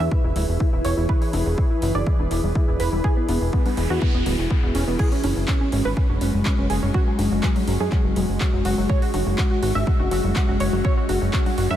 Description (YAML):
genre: progressive house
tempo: 123 BPM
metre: 4/4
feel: straight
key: unclear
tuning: A4 = 440 Hz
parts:
  - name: evolving wavetable pad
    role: sustained chords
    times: 0.0-11.8 s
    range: E3 to B4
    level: -26 LUFS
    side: left 1 dB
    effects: chorus, built-in reverb, sidechain pumping
  - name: tight sequenced synth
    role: arpeggios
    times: 0.0-11.8 s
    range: F#3 to E5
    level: -27 LUFS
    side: right 1 dB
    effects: chorus, sidechain pumping, tape echo
  - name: plucky analog bass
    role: bass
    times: 0.0-11.8 s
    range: D1 to F#2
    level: -23 LUFS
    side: equal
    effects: sidechain pumping
  - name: congas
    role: percussion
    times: 0.0-11.8 s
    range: none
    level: -36 LUFS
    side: left 5 dB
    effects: none
  - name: electronic kick drum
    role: drums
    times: 0.1-11.4 s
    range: none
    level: -21 LUFS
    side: equal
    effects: none
  - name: pop drum kit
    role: drums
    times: 0.4-11.7 s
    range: crash cymbal, handclaps, hi-hat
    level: -33 LUFS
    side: equal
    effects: overdrive, sidechain pumping on hats, sidechain pumping on cymbals
  - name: noise sweep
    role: sound effects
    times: 3.5-5.0 s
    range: none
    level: -37 LUFS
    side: equal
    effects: none
room: light reverb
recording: none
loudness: -19 LUFS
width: side -11 dB against mid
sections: 0.0-11.8 A section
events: filter sweep on synth arpeggio sound 0.0-11.8; noise sweep 3.5-5.0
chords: 0.0 E; 5.0 F#sus2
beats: 0.12 0.60 | 1.09 1.58 2.07 2.55 | 3.04 3.53 4.02 4.50 | 4.99 5.48 5.97 6.46 | 6.94 7.43 7.92 8.41 | 8.90 9.38 9.87 10.36 | 10.85 11.34